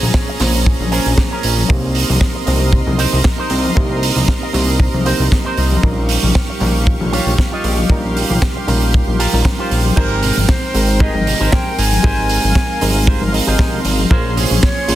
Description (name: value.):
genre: nu-disco, nu disco.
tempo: 116 BPM.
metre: 4/4.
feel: swing 54% on 16ths.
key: Ab major.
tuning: A4 = 440 Hz.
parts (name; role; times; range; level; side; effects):
reed electric piano; accompaniment; 0.0-15.0 s; G3 to C6; -22 LUFS; equal; sidechain pumping, dub echo.
lush unison pad; sustained chords; 0.0-15.0 s; Db4 to Db6; -25 LUFS; equal; chorus, sidechain pumping.
fat analog bass; bass; 0.0-15.0 s; Ab1 to C2; -17 LUFS; equal; none.
congas; percussion; 0.0-15.0 s; none; -24 LUFS; left 3 dB; none.
kick drum; drums; 0.1-14.7 s; none; -15 LUFS; equal; studio reverb.
tight funk drum kit; drums; 0.1-15.0 s; crash cymbal, hi-hat, snare drum; -21 LUFS; right 4 dB; studio reverb.
electric guitar with an envelope filter; riff; 0.3-14.9 s; Db4 to Eb5; -25 LUFS; right 2 dB; wide subtle chorus, dub echo.
breathy silver concert flute; melody; 10.0-15.0 s; Bb4 to Ab5; -22 LUFS; left 1 dB; digital delay.
room: light reverb.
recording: dense, heavily limited modern master.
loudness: -13 LUFS.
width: side -14 dB against mid.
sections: 0.0-10.0 A section; 10.0-15.0 B section.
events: drop 10.0-15.0.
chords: 0.0 Bbm9; 1.7 Cm7; 5.8 Eb9/Bb; 10.0 Abmaj9; 14.1 Bbm9.